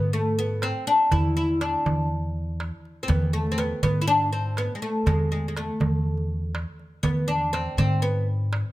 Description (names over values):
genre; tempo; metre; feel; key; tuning
Arabic maqam ensemble; 122 BPM; 4/4; straight; E maqam hijaz; A4 = 440 Hz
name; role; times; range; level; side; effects
oud; melody; 0.0-8.3 s; G#3 to E4; -25 LUFS; left 1 dB; none
upright bass; bass; 0.0-8.6 s; E2 to G#2; -26 LUFS; equal; none
darbuka; percussion; 0.6-8.6 s; none; -28 LUFS; right 2 dB; none
room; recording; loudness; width
little or no reverb; close, detailed microphones; -22 LUFS; side -16 dB against mid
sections
0.0-8.7 A section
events
none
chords
none